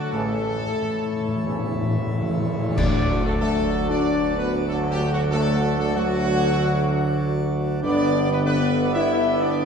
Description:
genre	classical, ceremonial fanfare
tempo	93 BPM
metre	4/4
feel	uneven beats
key	D major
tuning	A4 = 440 Hz
part	clear trumpet section	melody	0.0-9.7 s	F#4 to E5	-28 LUFS	equal	none
part	mellow French horn section	sustained chords	0.0-9.7 s	F#3 to E4	-26 LUFS	left 4 dB	none
part	pipe organ, plenum	sustained chords	0.0-9.7 s	D3 to D5	-29 LUFS	equal	none
part	warm trombone section	sustained chords	0.1-9.7 s	C#3 to B3	-28 LUFS	right 3 dB	none
part	warm tuba	bass	0.1-9.7 s	E1 to D2	-26 LUFS	right 2 dB	none
part	cymbal swell, clash cymbals and concert bass drum	percussion	0.1-4.0 s	none	-29 LUFS	equal	none
part	timpani	percussion	0.1-3.7 s	A2 to D3	-26 LUFS	left 1 dB	none
room	wet church reverb, RT60 2.7 s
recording	dark, warm production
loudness	-20 LUFS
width	side -6 dB against mid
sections	0.0-2.8 A section; 2.8-9.7 B section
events	timpani fill 0.1-2.8; band accent 2.8-3.4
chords	0.1 A; 2.8 D; 7.8 G

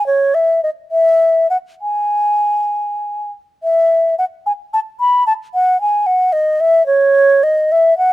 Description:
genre	classical, baroque-style fantasia for unaccompanied flute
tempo	65-75 BPM (dotted quarters)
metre	6/8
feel	rubato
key	E major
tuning	A4 = 439 Hz
part	mellow baroque flute	solo	0.0-8.1 s	C#5 to B5	-12 LUFS	equal	none
room	little or no reverb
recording	close, detailed microphones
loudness	-12 LUFS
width	side -16 dB against mid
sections	0.0-3.6 A section; 3.6-8.1 A section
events	none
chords	none

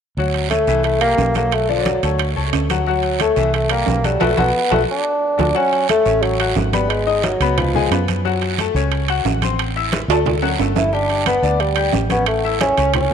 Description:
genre	latin, salsa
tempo	178 BPM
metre	4/4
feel	straight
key	D major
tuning	A4 = 439 Hz
part	mellow bassoon	melody	0.2-8.1, 10.8-13.1 s	E#3 to E4	-18 LUFS	right 1 dB	none
part	bright concert grand piano	accompaniment	0.2-13.1 s	D3 to G6	-22 LUFS	left 10 dB	none
part	fingered electric bass	bass	0.2-13.1 s	G1 to F#2	-21 LUFS	right 1 dB	none
part	congas	percussion	0.2-13.1 s	none	-26 LUFS	equal	none
part	guiro	percussion	0.2-13.1 s	none	-30 LUFS	right 14 dB	none
part	timbales	percussion	0.3-13.1 s	none	-24 LUFS	right 13 dB	none
room	moderate plate reverb, RT60 2.6 s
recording	1960s-style stereo with parts hard left and right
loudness	-15 LUFS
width	side -7 dB against mid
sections	0.2-5.6 A section; 5.6-13.1 B section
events	band accent 4.2-5.6; drum fill 10.1-10.9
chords	0.2 Dmaj7; 0.8 C7; 1.5 Bm7; 2.2 Dmaj7; 3.5 C7; 4.2 B5; 4.9 D; 5.6 Amaj13; 6.9 G#m7; 7.6 C#7; 8.2 F#m; 9.6 Am; 10.3 D; 10.9 G; 12.3 A

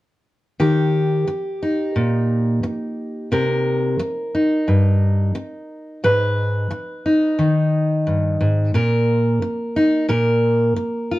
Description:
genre	folk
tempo	88 BPM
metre	4/4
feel	straight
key	Eb major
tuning	A4 = 440 Hz
part	fingerpicked steel-string acoustic guitar	accompaniment	0.6-11.2 s	G2 to Cb5	-17 LUFS	equal	none
room	moderate studio reverb, RT60 0.6 s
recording	dark, warm production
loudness	-17 LUFS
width	side -17 dB against mid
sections	0.6-11.2 A section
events	none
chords	0.6 Eb; 3.3 Cm7; 6.0 Abm; 8.7 Bbsus4; 10.1 Bb5

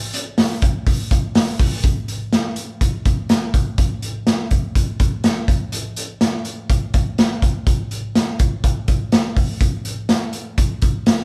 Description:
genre	indie pop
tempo	124 BPM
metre	4/4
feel	straight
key	none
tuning	none
part	raw garage drum kit	drums	0.1-11.2 s	hi-hat, kick drum, snare drum	-19 LUFS	equal	none
room	light reverb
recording	band playing live in one room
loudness	-19 LUFS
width	mono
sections	0.0-1.8 A section; 1.8-11.2 B section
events	none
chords	none

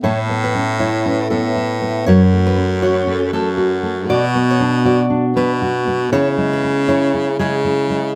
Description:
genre	acoustic pop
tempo	118 BPM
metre	4/4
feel	swing 60% on 16ths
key	unclear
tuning	A4 = 441 Hz
part	nylon-string guitar	accompaniment	0.0-8.2 s	F#2 to F#4	-19 LUFS	equal	none
part	fingerpicked steel-string acoustic guitar	arpeggios	0.0-7.5 s	G#4 to D5	-26 LUFS	equal	none
part	bright baritone saxophone	bass	0.0-8.1 s	F#2 to C#3	-23 LUFS	equal	none
part	vibraphone with medium hard mallets	second line	1.1-4.0 s	C#4 to F#5	-26 LUFS	equal	none
room	moderate studio reverb, RT60 0.6 s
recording	none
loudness	-17 LUFS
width	mono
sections	0.0-8.2 A section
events	none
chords	0.0 Aadd9; 2.1 F#m; 4.1 Bm; 6.1 C#m

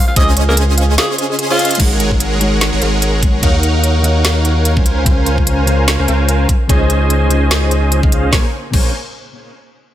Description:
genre	future bass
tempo	147 BPM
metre	4/4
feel	swing 56% on 16ths, half-time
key	Bb minor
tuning	A4 = 441 Hz
part	growling alto saxophone	melody	0.0-1.8 s	F4 to F5	-20 LUFS	equal	sidechain pumping, tape echo
part	airy breathy pad	sustained chords	0.0-1.8 s	Db3 to C5	-28 LUFS	right 3 dB	chorus, sidechain pumping
part	thumb-piano-like synth pluck	arpeggios	0.0-1.7 s	Ab4 to F5	-27 LUFS	left 1 dB	chorus, cassette tape, sidechain pumping, tape echo
part	airy dreamy lead	arpeggios	0.2-1.8 s	F5 to Ab5	-26 LUFS	equal	chorus, sidechain pumping
part	supersaw chords	riff	0.2-8.9 s	Ab3 to Ab5	-17 LUFS	right 1 dB	sidechain pumping, low-pass filter, tape echo
part	saturated sub bass	bass	0.2-8.9 s	Ab1 to Eb2	-15 LUFS	equal	sidechain pumping
part	electronic kick drum	drums	0.2-8.8 s	none	-14 LUFS	equal	studio reverb
part	trap drum kit	drums	0.2-8.8 s	crash cymbal, hi-hat, snare drum	-18 LUFS	equal	studio reverb
part	mellow electric guitar	accompaniment	1.8-8.9 s	Bb2 to Db5	-22 LUFS	left 2 dB	sidechain pumping, tape echo
room	light reverb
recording	none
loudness	-11 LUFS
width	side -12 dB against mid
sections	0.0-1.8 A section; 1.8-8.3 B section; 8.3-9.9 C section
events	drop 0.0-1.8; break 1.0-1.8; drum fill 1.6; filter sweep on supersaw synth 1.8-8.3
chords	0.0 Dbmaj7; 1.8 Ab7sus4; 3.4 Ebm9; 4.9 Bbm7/Db; 6.5 Dbmaj7; 8.3 Bbm9

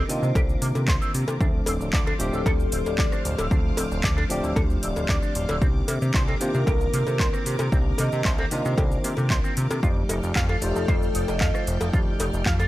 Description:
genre	nu-disco, nu disco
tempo	114 BPM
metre	4/4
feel	straight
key	C dorian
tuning	A4 = 440 Hz
part	tine electric piano	accompaniment	0.0-12.7 s	Eb3 to D5	-30 LUFS	equal	sidechain pumping
part	string machine, full ensemble	sustained chords	0.0-12.7 s	A4 to F6	-37 LUFS	equal	ensemble chorus, sidechain pumping
part	electric guitar with an envelope filter	riff	0.0-12.7 s	C3 to F5	-33 LUFS	right 2 dB	lush chorus, vintage 12-bit sampler grit, tape echo
part	chorused synth bass	bass	0.0-12.7 s	D1 to C3	-26 LUFS	equal	none
part	vibraphone with medium hard mallets	melody	0.1-11.7 s	G4 to Eb5	-32 LUFS	left 1 dB	vintage 12-bit sampler grit, tape echo
part	house drum kit	drums	0.1-12.7 s	handclaps, hi-hat, rim click, shaker	-31 LUFS	equal	overdrive
part	electronic kick drum	drums	0.4-12.6 s	none	-24 LUFS	equal	overdrive
part	cowbell	percussion	0.4-12.7 s	none	-32 LUFS	left 2 dB	none
room	little or no reverb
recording	none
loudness	-21 LUFS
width	side -16 dB against mid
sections	0.0-12.7 A section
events	none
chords	0.0 Cm9; 1.4 Dm7; 5.6 Cm9; 9.8 F13

